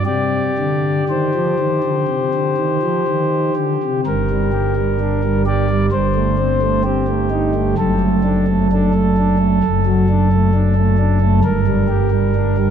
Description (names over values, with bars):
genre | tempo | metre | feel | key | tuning
classical, chorale-style piece for pipe organ | 59-67 BPM | 4/4 | rubato | C minor, G minor from 4.1 s | A4 = 441 Hz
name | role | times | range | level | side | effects
pipe organ, principal | solo | 0.0-12.7 s | F#1 to D5 | -14 LUFS | equal | none
room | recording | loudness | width
wet cathedral reverb, RT60 4.4 s | none | -14 LUFS | side -8 dB against mid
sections
0.0-4.1 A section; 4.1-12.7 B section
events
none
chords
0.1 Cm; 4.1 Gm; 5.9 Am7/G; 7.8 D/F#; 11.4 Gm